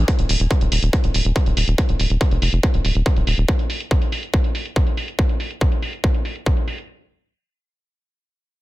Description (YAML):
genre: psychedelic trance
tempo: 141 BPM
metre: 4/4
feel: straight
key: unclear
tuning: A4 = 437 Hz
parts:
  - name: tight sequencer bass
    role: bass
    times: 0.0-3.5 s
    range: Eb1 to F1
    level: -18 LUFS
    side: equal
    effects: none
  - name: electronic hi-hat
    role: drums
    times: 0.1-6.9 s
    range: none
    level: -27 LUFS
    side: right 1 dB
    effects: low-pass filter on hats, low-pass filter on cymbals, low-pass filter on perc, low-pass filter on snare, low-pass filter on room
  - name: electronic kick drum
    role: drums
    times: 0.1-6.5 s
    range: none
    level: -19 LUFS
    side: equal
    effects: distortion
room: little or no reverb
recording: dense, heavily limited modern master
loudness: -17 LUFS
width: side -18 dB against mid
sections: 0.0-6.9 A section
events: none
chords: none